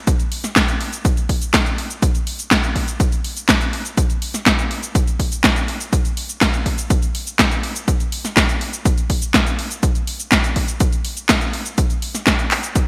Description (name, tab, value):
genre	italo disco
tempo	123 BPM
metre	4/4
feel	straight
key	none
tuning	none
part	electronic kick drum	drums	0.1-12.9 s	none	-21 LUFS	equal	studio reverb
part	house drum kit	drums	0.1-12.9 s	cabasa, handclaps, hi-hat, snare drum	-21 LUFS	equal	studio reverb, gated reverb
room	light reverb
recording	bright 1980s-style digital production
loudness	-19 LUFS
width	mono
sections	0.0-12.9 A section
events	none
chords	none